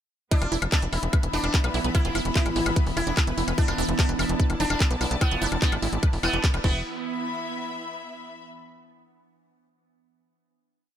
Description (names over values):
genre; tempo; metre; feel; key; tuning
psychedelic trance; 147 BPM; 4/4; straight; unclear; A4 = 443 Hz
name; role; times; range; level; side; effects
sitar; melody; 0.3-6.8 s; B3 to E4; -31 LUFS; equal; phaser, sidechain pumping, dub echo
evolving wavetable pad; sustained chords; 0.9-6.6 s; E3 to B3; -34 LUFS; right 3 dB; ensemble chorus, built-in reverb, sidechain pumping
wide unison pluck; riff; 0.3-6.8 s; D4 to B4; -33 LUFS; right 3 dB; auto-pan, sidechain pumping, dub echo
electronic kick drum; drums; 0.3-6.7 s; none; -22 LUFS; equal; none
garage drum kit; drums; 0.3-6.7 s; crash cymbal, handclaps, hi-hat, woodblock; -30 LUFS; left 2 dB; none
clear symphonic string section; texture; 0.3-8.4 s; B3 to B5; -34 LUFS; left 2 dB; sidechain pumping
tight sequencer bass; bass; 0.4-6.8 s; E1 to B1; -28 LUFS; equal; none
formant-sweep wobble bass; second line; 4.0-6.4 s; B3 to E4; -39 LUFS; left 2 dB; none
room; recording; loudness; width
little or no reverb; none; -22 LUFS; side -10 dB against mid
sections
0.3-6.8 drop; 6.8-8.5 final chord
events
drop 0.3-6.8; band accent 6.4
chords
0.3 E5